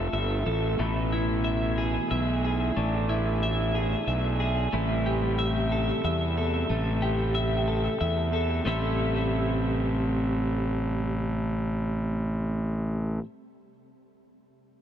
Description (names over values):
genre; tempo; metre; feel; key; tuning
post-rock; 92 BPM; 3/4; straight; A minor; A4 = 440 Hz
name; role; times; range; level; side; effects
pedal steel guitar; sustained chords; 0.0-13.2 s; B2 to F4; -34 LUFS; right 2 dB; wide subtle chorus
twelve-string electric guitar; arpeggios; 0.0-13.3 s; A3 to E5; -29 LUFS; left 1 dB; wide subtle chorus, analog delay
fuzz fingered electric bass; bass; 0.0-13.2 s; G1 to E2; -27 LUFS; equal; overdrive
room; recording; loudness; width
moderate huge ambient reverb, RT60 8.2 s; dreamy mix soaked in reverb; -24 LUFS; side -10 dB against mid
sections
0.0-8.7 A section; 8.7-12.6 B section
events
none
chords
0.0 Fmaj7; 0.8 E/A; 4.7 Am7